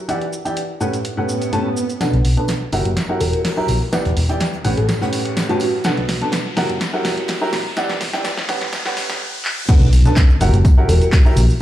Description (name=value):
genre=piano house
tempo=125 BPM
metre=4/4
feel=straight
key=B minor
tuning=A4 = 439 Hz
part: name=clear upright piano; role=riff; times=0.1-11.4 s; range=A2 to A#5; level=-21 LUFS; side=equal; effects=sidechain pumping, low-pass filter, tape echo
part: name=punchy analog drum machine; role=drums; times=0.1-11.6 s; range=crash cymbal, handclaps, hi-hat, shaker, snare drum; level=-24 LUFS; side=equal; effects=none
part: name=swell, riser and impact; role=sound effects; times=1.2-11.6 s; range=none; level=-26 LUFS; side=equal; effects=none
part: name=jazz brush drum kit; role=drums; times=2.0-11.5 s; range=hi-hat, snare drum, tambourine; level=-35 LUFS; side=right 2 dB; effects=sidechain pumping on hats, high-pass filter on hats, high-pass filter on snare, sidechain pumping on perc, high-pass filter on perc, high-pass filter on room
part: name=overdriven fingered electric bass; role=bass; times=2.1-11.4 s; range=E1 to B1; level=-16 LUFS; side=equal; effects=tube saturation, sidechain pumping, low-pass filter
part: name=bell-like FM electric piano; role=melody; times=3.2-5.8, 10.9-11.1 s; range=F#4 to B4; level=-25 LUFS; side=equal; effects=chorus, tape echo
part: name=electronic kick drum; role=drums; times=9.7-11.2 s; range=none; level=-11 LUFS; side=equal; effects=none
room=light reverb, studio ambience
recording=played on a big sound system in a bare room, large studio reverb, high-pass filter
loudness=-15 LUFS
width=side -13 dB against mid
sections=0.0-2.0 A section; 2.0-9.7 B section; 9.7-11.6 C section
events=swell 1.2-2.0; build-up 2.0-9.7; drum fill 2.0-9.2, 9.4; riser 2.0-9.7; filter sweep on upright piano 2.0-9.7; filter sweep 2.0-9.7; drop 9.7-11.6; impact 9.7-11.6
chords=0.1 Em9; 0.8 A13; 2.0 Bm7; 2.7 F#7b9; 3.9 Em9; 4.6 A13; 5.8 Bm7; 6.6 F#7b9; 7.8 Em9; 8.5 A13; 9.7 Bm7; 10.4 F#7b9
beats=| 0.09 0.57 1.05 1.53 | 2.01 2.49 2.97 3.45 | 3.93 4.41 4.89 5.37 | 5.85 6.33 6.81 7.29 | 7.77 8.25 8.73 9.21 | 9.69 10.17 10.65 11.13 | 11.61